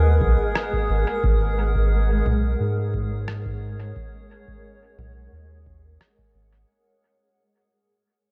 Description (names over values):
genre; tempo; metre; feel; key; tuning
ambient dub; 88 BPM; 4/4; straight; G# minor; A4 = 440 Hz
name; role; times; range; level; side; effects
granular cloud pad; sustained chords; 0.0-6.7 s; G#3 to F#5; -31 LUFS; equal; built-in reverb
soft dub sub bass; bass; 0.0-6.6 s; G#1 to G#2; -24 LUFS; equal; none
drifting glass-harmonics texture; texture; 0.0-6.7 s; G#4; -35 LUFS; equal; chorus, built-in reverb
electronic kick drum; drums; 0.2-6.3 s; none; -29 LUFS; equal; none
electronic rim click and congas; drums; 0.6-6.2 s; none; -32 LUFS; equal; dub echo
room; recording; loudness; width
little or no reverb; echo-heavy mix, nothing above 10.8 kHz; -22 LUFS; mono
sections
0.0-6.7 A section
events
fade-out 0.0-6.7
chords
0.0 G#m9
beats
0.55 | 1.23 1.92 2.60 3.28 | 3.96 4.64 5.33 6.01